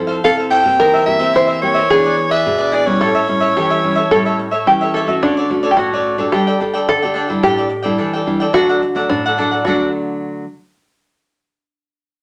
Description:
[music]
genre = samba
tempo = 108 BPM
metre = 4/4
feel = straight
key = D major from 5.2 s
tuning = A4 = 437 Hz
[part]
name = open-back banjo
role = second line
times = 0.0-9.9 s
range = D4 to C5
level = -19 LUFS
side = equal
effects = none
[part]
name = nylon-string guitar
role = accompaniment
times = 0.0-10.4 s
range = A2 to A4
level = -22 LUFS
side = equal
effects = none
[part]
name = cavaquinho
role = accompaniment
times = 0.1-9.9 s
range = D4 to G5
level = -22 LUFS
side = equal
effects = none
[part]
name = warm soprano saxophone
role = melody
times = 0.2-4.7 s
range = C#5 to G5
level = -18 LUFS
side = equal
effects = none
[sound]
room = wet studio ambience, RT60 0.5 s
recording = none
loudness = -15 LUFS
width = mono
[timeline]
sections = 0.0-5.2 A section; 5.2-9.7 B section; 9.7-11.9 C section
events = none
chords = 0.0 Fmaj7; 0.8 C7/E; 1.9 E7; 3.0 A7; 5.2 Dmaj7; 6.3 Gsus2; 7.4 A7sus4; 8.5 D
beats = 0.25 | 0.80 1.35 1.91 2.46 | 3.01 3.57 4.12 4.67 | 5.23 5.78 6.33 6.89 | 7.44 7.99 8.55 9.10 | 9.65 10.21

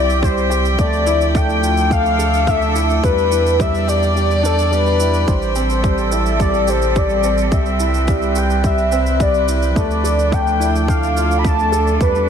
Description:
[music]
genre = piano and strings electronica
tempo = 107 BPM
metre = 4/4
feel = straight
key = unclear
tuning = A4 = 439 Hz
[part]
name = warm velvety synth lead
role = melody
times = 0.0-12.3 s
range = A4 to B5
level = -19 LUFS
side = left 3 dB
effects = chorus, ping-pong delay
[part]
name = rich string quartet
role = sustained chords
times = 0.0-12.3 s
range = F3 to G5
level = -23 LUFS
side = right 2 dB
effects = sidechain pumping
[part]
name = felt-muted upright piano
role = riff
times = 0.0-12.3 s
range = G3 to A4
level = -21 LUFS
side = right 2 dB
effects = ping-pong delay
[part]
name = warm sub bass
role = bass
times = 0.0-12.3 s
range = A1 to E2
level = -19 LUFS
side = equal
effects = sidechain pumping
[part]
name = shaker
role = drums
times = 0.1-12.3 s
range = none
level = -32 LUFS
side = right 8 dB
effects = none
[part]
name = electronic kick drum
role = drums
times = 0.2-12.1 s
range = none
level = -18 LUFS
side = equal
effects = none
[sound]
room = moderate plate reverb, RT60 1.8 s, studio reverb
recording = dreamy mix soaked in reverb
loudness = -14 LUFS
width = side -8 dB against mid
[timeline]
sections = 0.0-12.3 A section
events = kick drops out 4.2-5.3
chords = 0.0 C; 0.8 Dmadd9; 3.0 Em7; 5.3 Am7; 7.5 Cmaj7; 9.8 Dmadd9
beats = 0.23 | 0.79 1.35 1.91 2.47 | 3.04 3.60 4.16 4.72 | 5.28 5.84 6.40 6.96 | 7.52 8.08 8.64 9.20 | 9.76 10.32 10.88 11.45 | 12.01

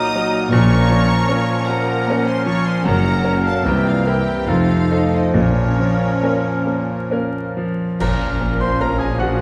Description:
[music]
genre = classical, romantic movement for piano and orchestra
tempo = 65-80 BPM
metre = 3/4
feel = rubato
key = Bb minor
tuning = A4 = 440 Hz
[part]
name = bright concert grand piano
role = melody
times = 0.0-9.4 s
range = C2 to C6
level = -22 LUFS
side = equal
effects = none
[part]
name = warm symphonic violin section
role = melody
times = 0.0-9.4 s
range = Bb4 to Eb6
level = -30 LUFS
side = equal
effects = none
[part]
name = clear clarinet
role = second line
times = 0.0-9.4 s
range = C4 to Eb4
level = -32 LUFS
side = equal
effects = none
[part]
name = large flute ensemble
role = second line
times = 0.0-9.4 s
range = Bb4 to Bb5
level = -31 LUFS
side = equal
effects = none
[part]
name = warm oboe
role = second line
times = 0.0-9.4 s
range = Gb4 to C5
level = -30 LUFS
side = equal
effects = none
[part]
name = warm symphonic violin section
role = second line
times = 0.0-9.4 s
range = Db4 to C6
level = -32 LUFS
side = equal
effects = none
[part]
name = mellow bassoon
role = accompaniment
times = 0.0-9.4 s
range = E3 to Gb3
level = -30 LUFS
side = equal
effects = none
[part]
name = warm symphonic viola section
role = accompaniment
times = 0.0-9.4 s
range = F3 to E4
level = -32 LUFS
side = equal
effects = none
[part]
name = bright trombone section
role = sustained chords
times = 0.0-8.3 s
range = Bb2 to Gb3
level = -33 LUFS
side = equal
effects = none
[part]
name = mellow French horn section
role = sustained chords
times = 0.0-8.3 s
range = A3 to Eb4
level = -30 LUFS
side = equal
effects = none
[part]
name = mellow tuba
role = bass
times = 0.5-6.1 s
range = F1 to C2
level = -26 LUFS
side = equal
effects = none
[part]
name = rich symphonic double bass section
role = bass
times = 0.5-9.4 s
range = F1 to C2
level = -26 LUFS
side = equal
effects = none
[part]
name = warm symphonic cello section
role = bass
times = 0.5-9.4 s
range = F2 to C3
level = -29 LUFS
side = equal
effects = none
[part]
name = timpani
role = percussion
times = 5.3-6.6 s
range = Bb2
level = -26 LUFS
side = equal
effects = none
[part]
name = clash cymbals and concert bass drum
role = percussion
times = 8.0-9.4 s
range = none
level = -28 LUFS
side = equal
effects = none
[sound]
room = wet recital hall reverb, RT60 1.4 s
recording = vinyl crackle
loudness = -18 LUFS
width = mono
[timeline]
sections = 0.0-8.0 A section; 8.0-9.4 B section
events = band accent 8.0-8.8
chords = 0.0 Ebm/Bb; 0.5 Bbm; 2.9 Gb; 3.7 C7; 4.5 F7; 5.4 Bbm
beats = | 0.52 1.29 2.07 | 2.85 3.65 4.48 | 5.36 6.24 7.12 | 8.01 8.80

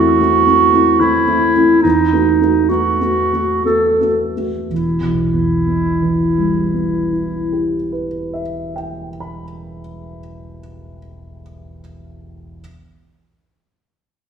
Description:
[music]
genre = classical, romantic duo for clarinet and grand piano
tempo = 54-75 BPM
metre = 3/4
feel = rubato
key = E minor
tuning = A4 = 442 Hz
[part]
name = clear clarinet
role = melody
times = 0.0-7.7 s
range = D#4 to A4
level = -15 LUFS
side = right 2 dB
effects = none
[part]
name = dark grand piano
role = accompaniment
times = 0.0-12.6 s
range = E1 to B5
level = -18 LUFS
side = equal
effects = none
[sound]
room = wet stone room reverb, RT60 1.5 s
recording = heard from further back in the room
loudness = -13 LUFS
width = side -7 dB against mid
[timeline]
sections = 0.0-4.7 A section; 4.7-10.3 B section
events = slowing down 0.0-4.7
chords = 0.0 Am/E; 1.8 B7/E; 4.7 Em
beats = 0.20 1.01 | 1.84 2.70 3.66 | 4.70 5.65 6.58 | 7.52 8.45 9.39

